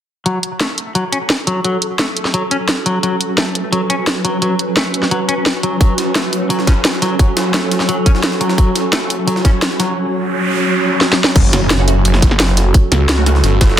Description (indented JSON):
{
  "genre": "dark technical drum and bass",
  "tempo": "173 BPM",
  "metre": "4/4",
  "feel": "straight",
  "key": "F# minor",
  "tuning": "A4 = 439 Hz",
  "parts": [
    { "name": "swarming drone", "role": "sustained chords", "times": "1.2-13.8 s", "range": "F#3 to C#5", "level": "-19 LUFS", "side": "right 1 dB", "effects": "built-in reverb, sidechain pumping" },
    { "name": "semi-hollow electric guitar", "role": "arpeggios", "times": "0.3-9.9 s", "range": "F#3 to C#4", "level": "-20 LUFS", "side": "left 2 dB", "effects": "sidechain pumping, low-pass filter, tape echo" },
    { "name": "drum and bass drum kit", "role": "drums", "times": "0.3-13.7 s", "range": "crash cymbal, hi-hat, snare drum", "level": "-16 LUFS", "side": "equal", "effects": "none" },
    { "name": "electronic kick drum", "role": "drums", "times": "5.8-13.7 s", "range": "none", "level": "-11 LUFS", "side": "equal", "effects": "none" },
    { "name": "jungle sampler-style drum kit", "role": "drums", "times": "5.8-13.8 s", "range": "hi-hat, snare drum", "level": "-23 LUFS", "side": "equal", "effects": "high-pass filter on hats, high-pass filter on snare, high-pass filter on room" },
    { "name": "noise sweep and impact", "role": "sound effects", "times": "10.2-12.7 s", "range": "none", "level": "-20 LUFS", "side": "right 1 dB", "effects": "none" },
    { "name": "snarling distorted saw bass", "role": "bass", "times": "11.4-13.8 s", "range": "F#1 to C#2", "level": "-14 LUFS", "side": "equal", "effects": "distortion, tube saturation" },
    { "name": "filtered dub chord stab", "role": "stabs", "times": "11.8-13.3 s", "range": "A3 to F#4", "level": "-23 LUFS", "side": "right 4 dB", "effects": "phaser, ensemble chorus, tape echo" }
  ],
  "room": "moderate digital room reverb, RT60 1.0 s, digital ambience",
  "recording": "dense, heavily limited modern master",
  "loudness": "-12 LUFS",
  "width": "side -10 dB against mid",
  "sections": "0.3-11.4 A section; 11.4-13.8 B section",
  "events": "noise sweep 10.2-11.4; drum fill 11.0-11.4; drop 11.4-13.8; impact 11.4-12.7",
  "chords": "0.3 F#m"
}